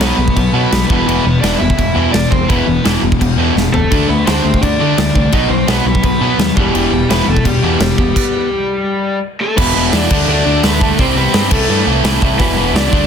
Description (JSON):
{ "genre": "punk rock", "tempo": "169 BPM", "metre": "4/4", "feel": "straight", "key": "E minor", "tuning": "A4 = 440 Hz", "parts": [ { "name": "overdriven electric guitar", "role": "melody", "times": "0.0-13.1 s", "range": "G3 to E5", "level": "-18 LUFS", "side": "left 1 dB", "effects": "none" }, { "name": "distorted electric guitar", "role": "riff", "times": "0.0-13.1 s", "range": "E2 to D4", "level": "-18 LUFS", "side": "left 12 dB", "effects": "distortion" }, { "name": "distorted electric guitar", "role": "riff", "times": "0.0-13.1 s", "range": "E2 to D4", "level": "-19 LUFS", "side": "right 15 dB", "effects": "overdrive" }, { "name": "fuzz guitar", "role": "riff", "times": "0.0-8.5 s", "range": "E2 to D4", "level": "-21 LUFS", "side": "equal", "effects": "distortion" }, { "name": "growling picked electric bass", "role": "bass", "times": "0.0-13.1 s", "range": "E1 to D3", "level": "-18 LUFS", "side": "equal", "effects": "overdrive" }, { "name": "big rock drum kit", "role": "drums", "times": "0.0-13.0 s", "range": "crash cymbal, hi-hat, kick drum, snare drum, toms", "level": "-16 LUFS", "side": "equal", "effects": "none" } ], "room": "little or no reverb", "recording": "dense, heavily limited modern master", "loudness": "-11 LUFS", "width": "side -7 dB against mid", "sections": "0.0-9.6 A section; 9.6-13.1 B section", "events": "drum fill 3.6-3.9; stop 8.2-9.6", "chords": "0.0 B5; 0.9 E5; 3.9 D5; 5.3 B; 6.6 Em; 10.1 D5; 11.0 C5; 11.5 Am/C; 12.4 E5", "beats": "0.01 0.36 0.72 | 1.07 1.43 1.78 2.14 | 2.49 2.85 3.20 3.56 | 3.91 4.26 4.62 4.97 | 5.33 5.68 6.04 6.39 | 6.74 7.10 7.45 7.81 | 8.16 8.51 8.87 9.22 | 9.57 9.93 10.28 10.63 | 10.98 11.34 11.69 12.04 | 12.39 12.75" }